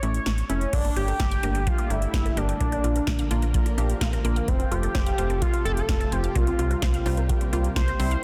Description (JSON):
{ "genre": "synth-pop", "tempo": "128 BPM", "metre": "4/4", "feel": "straight", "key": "unclear", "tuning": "A4 = 437 Hz", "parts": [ { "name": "octave-doubled lead", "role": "melody", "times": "0.0-8.2 s", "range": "Bb3 to C#5", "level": "-32 LUFS", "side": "equal", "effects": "chorus, tape echo" }, { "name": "funky polysynth comp", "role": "accompaniment", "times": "0.0-8.1 s", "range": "G3 to G4", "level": "-35 LUFS", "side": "equal", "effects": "chorus" }, { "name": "slap-like FM bass", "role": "bass", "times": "0.0-8.2 s", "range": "F1 to C2", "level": "-29 LUFS", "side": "equal", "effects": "none" }, { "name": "electro analog drum machine", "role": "drums", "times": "0.0-8.2 s", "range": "crash cymbal, hi-hat, kick drum, snare drum", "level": "-28 LUFS", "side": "equal", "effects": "none" }, { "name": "lush unison pad", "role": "sustained chords", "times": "1.2-8.2 s", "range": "C3 to Bb4", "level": "-37 LUFS", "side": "equal", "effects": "chorus" }, { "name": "resonant blip pluck", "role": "arpeggios", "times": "0.7-8.2 s", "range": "A3 to G5", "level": "-39 LUFS", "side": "equal", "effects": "phaser, tape echo" } ], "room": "light reverb, digital ambience", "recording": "dense, heavily limited modern master", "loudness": "-24 LUFS", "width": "mono", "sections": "0.7-8.2 A section", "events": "none", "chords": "0.0 A; 0.7 Gmadd9; 2.6 Bb; 4.5 F; 6.4 C7sus4" }